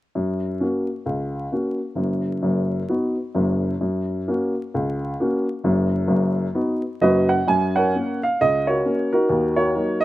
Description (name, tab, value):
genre	jazz, stride piano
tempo	131 BPM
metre	4/4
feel	swing 59% on 8ths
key	F# major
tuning	A4 = 445 Hz
part	warm upright piano	solo	0.2-10.0 s	F#1 to G#5	-19 LUFS	equal	none
room	little or no reverb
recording	recorded outdoors, with no room sound, vinyl crackle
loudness	-19 LUFS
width	side -16 dB against mid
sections	0.2-7.5 A section; 7.5-10.0 B section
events	none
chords	0.2 F#; 2.0 B/F#; 3.8 F#; 5.6 B/F#; 7.5 F#; 9.3 D#m7